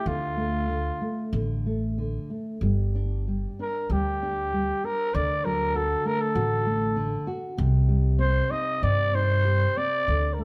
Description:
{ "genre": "fado-style ballad", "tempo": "96 BPM", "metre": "4/4", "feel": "rubato", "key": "G harmonic minor", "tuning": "A4 = 440 Hz", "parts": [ { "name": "growling trumpet", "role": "melody", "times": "0.0-10.4 s", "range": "F4 to Eb5", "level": "-29 LUFS", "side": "equal", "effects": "none" }, { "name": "nylon-string guitar", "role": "accompaniment", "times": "0.0-10.4 s", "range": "C3 to G4", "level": "-33 LUFS", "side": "equal", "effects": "none" }, { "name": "upright bass", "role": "bass", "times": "0.1-10.4 s", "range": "G1 to G2", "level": "-28 LUFS", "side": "equal", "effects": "none" } ], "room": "light reverb", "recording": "close, detailed microphones", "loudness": "-26 LUFS", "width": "mono", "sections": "0.0-2.6 A section; 2.6-10.4 B section", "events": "none", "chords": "0.1 Dm; 2.6 G5; 5.1 D; 7.6 Cm" }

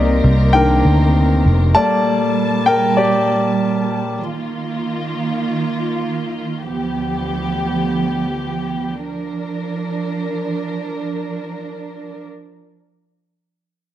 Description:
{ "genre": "pop", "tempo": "free time", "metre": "none", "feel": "none", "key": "Bb major", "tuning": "A4 = 438 Hz", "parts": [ { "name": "clear concert grand piano", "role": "accompaniment", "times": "0.0-4.2 s", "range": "Eb3 to A5", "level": "-16 LUFS", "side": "left 2 dB", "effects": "none" }, { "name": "warm studio string section", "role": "sustained chords", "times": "0.0-12.2 s", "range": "D2 to A5", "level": "-21 LUFS", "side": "right 2 dB", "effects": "none" }, { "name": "vintage muted fingered electric bass", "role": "bass", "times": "0.0-1.7 s", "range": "F1 to D2", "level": "-13 LUFS", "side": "equal", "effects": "none" } ], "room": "moderate large studio reverb, RT60 1.4 s, small room ambience", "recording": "heavily compressed radio sound", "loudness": "-16 LUFS", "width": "side -12 dB against mid", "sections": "0.0-9.0 A section; 9.0-11.5 B section", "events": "grand piano solo 0.0-9.0", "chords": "0.0 Cm7; 1.8 Gmadd9; 4.2 Ebsus2; 6.6 G7/D; 9.0 Bb" }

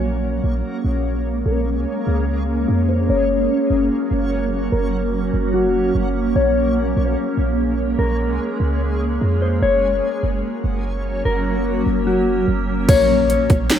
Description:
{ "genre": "hip hop, atmospheric cloud-rap", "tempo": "147 BPM", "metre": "4/4", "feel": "half-time", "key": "Bb minor", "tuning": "A4 = 440 Hz", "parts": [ { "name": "mellow electric guitar", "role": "melody", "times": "0.0-13.7 s", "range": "Gb4 to Db5", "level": "-22 LUFS", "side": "left 3 dB", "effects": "low-pass filter, ping-pong delay" }, { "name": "granular cloud pad", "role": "sustained chords", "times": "0.0-13.8 s", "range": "Gb3 to Db4", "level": "-21 LUFS", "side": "equal", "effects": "built-in reverb, sidechain pumping, low-pass filter" }, { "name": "Celtic harp", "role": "arpeggios", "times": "0.0-2.5, 12.9-13.8 s", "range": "Bb3 to Gb5", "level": "-30 LUFS", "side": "left 5 dB", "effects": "low-pass filter, ping-pong delay" }, { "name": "warm 808-style bass", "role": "bass", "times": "0.0-13.7 s", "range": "Gb1 to F2", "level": "-22 LUFS", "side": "right 1 dB", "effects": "none" }, { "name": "backwards swelling texture", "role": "texture", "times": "0.0-12.9 s", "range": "Bb3 to Db5", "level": "-29 LUFS", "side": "right 1 dB", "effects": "built-in reverb" }, { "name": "trap drum kit", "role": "drums", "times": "12.9-13.8 s", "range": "crash cymbal, hi-hat, kick drum, snare drum", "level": "-16 LUFS", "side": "right 1 dB", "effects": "none" }, { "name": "impact", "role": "sound effects", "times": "13.1-13.8 s", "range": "none", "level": "-30 LUFS", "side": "right 2 dB", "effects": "none" } ], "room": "wet small room reverb, RT60 0.5 s", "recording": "rough home demo mix", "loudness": "-17 LUFS", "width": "side -9 dB against mid", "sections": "0.0-12.9 A section", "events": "filter sweep 0.0-12.9; impact 12.9-13.8", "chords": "0.0 Bbm7; 3.1 Gb; 6.4 Bbm7; 9.6 Gb; 12.9 Bbm7" }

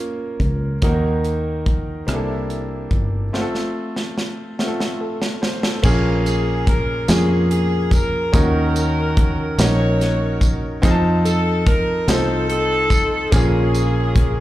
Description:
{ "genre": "slow gospel", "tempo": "48 BPM (dotted quarters)", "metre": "6/8", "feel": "straight", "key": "Bb minor from 5.8 s", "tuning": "A4 = 440 Hz", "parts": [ { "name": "bright grand piano", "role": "accompaniment", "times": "0.0-14.4 s", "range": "Bb2 to A5", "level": "-23 LUFS", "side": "equal", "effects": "slapback echo" }, { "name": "fingered electric bass", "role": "bass", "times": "0.0-14.4 s", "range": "F1 to F2", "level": "-20 LUFS", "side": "equal", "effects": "none" }, { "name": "crisp fusion drum kit", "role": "drums", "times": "0.4-14.3 s", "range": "crash cymbal, hi-hat, kick drum, rim click, snare drum", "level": "-20 LUFS", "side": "equal", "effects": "none" }, { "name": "tambourine", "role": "percussion", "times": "5.8-14.1 s", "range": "none", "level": "-32 LUFS", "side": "right 3 dB", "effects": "none" }, { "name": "warm horn section", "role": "melody", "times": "6.3-14.4 s", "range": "C4 to Db5", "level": "-22 LUFS", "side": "left 1 dB", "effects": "slapback echo" } ], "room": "small room ambience", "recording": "live gig heard through the venue's PA, club reverb", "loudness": "-16 LUFS", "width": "side -15 dB against mid", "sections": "0.0-5.8 A section; 5.8-14.4 B section", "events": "break 3.3-5.8; drum fill 3.3-5.8", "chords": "0.0 Bbm/F; 0.8 Ebm; 2.1 C13; 3.3 F; 5.8 Bbm7; 8.3 Ebm7; 10.8 F7; 13.3 Bbm7" }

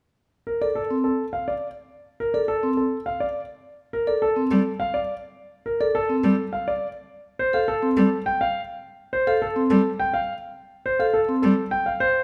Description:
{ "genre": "classical, minimalist pattern music", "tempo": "104 BPM", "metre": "3/4", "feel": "straight", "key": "Bb major", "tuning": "A4 = 439 Hz", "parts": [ { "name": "warm concert grand piano", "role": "melody", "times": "0.5-12.2 s", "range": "A4 to G5", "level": "-26 LUFS", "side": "equal", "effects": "none" }, { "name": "vibraphone with medium mallets", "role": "arpeggios", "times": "0.6-11.5 s", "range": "C4 to A4", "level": "-27 LUFS", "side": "equal", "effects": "none" }, { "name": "rich cello", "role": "accompaniment", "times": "4.5-11.5 s", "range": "G3", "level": "-26 LUFS", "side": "equal", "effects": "none" } ], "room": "moderate recital hall reverb, RT60 1.4 s", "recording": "none", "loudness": "-23 LUFS", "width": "mono", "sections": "0.3-12.2 A section", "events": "none", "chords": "0.3 Bbadd9 (rootless)" }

